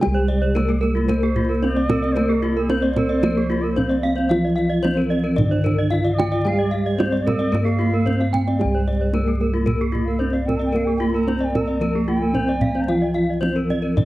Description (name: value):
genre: Balinese gamelan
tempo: 112 BPM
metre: 4/4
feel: straight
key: C slendro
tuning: A4 = 443 Hz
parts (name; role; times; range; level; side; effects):
- gamelan-type bronze metallophone; melody; 0.0-14.1 s; Bb3-45c to G4+25c; -23 LUFS; equal; none
- gamelan-type bronze metallophone; accompaniment; 0.0-14.1 s; D3+30c to Bb3-45c; -26 LUFS; right 1 dB; none
- gamelan-type bronze metallophone; arpeggios; 0.0-14.1 s; F4-35c to G5+25c; -27 LUFS; left 3 dB; none
- gamelan-type bossed gongs; bass; 0.0-14.1 s; C2 to Bb4-45c; -24 LUFS; equal; none
- kendang; percussion; 0.0-14.1 s; none; -25 LUFS; right 2 dB; none
- gamelan-type bronze metallophone; arpeggios; 0.1-13.8 s; G4+25c to G5+25c; -29 LUFS; right 4 dB; none
- bansuri; second line; 1.1-13.1 s; G4+24c to C6-44c; -30 LUFS; right 1 dB; none
room: moderate spring reverb, RT60 2.5 s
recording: dark, warm production, vinyl crackle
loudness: -18 LUFS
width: side -16 dB against mid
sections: 0.0-14.1 A section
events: none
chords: none